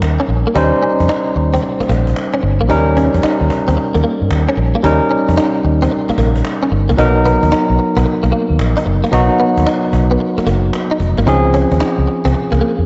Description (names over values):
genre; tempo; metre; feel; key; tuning
R&B, new jack swing; 112 BPM; 4/4; swing 66% on 16ths; unclear; A4 = 435 Hz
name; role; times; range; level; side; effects
barky tine electric piano; accompaniment; 0.0-12.9 s; F3 to C5; -18 LUFS; equal; slapback echo
vintage muted fingered electric bass; bass; 0.0-12.9 s; F1 to G2; -18 LUFS; equal; none
cajon; drums; 0.0-12.8 s; none; -28 LUFS; equal; slapback echo
direct-recorded clean electric guitar; riff; 0.2-12.7 s; Bb3 to Eb4; -22 LUFS; equal; ensemble chorus
room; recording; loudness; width
moderate lush hall reverb, RT60 1.7 s; big arena sound, nothing above 7.9 kHz; -14 LUFS; mono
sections
0.0-7.0 A section; 7.0-12.9 B section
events
none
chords
0.0 Eb7; 7.0 Bmaj7; 11.3 Dbmaj7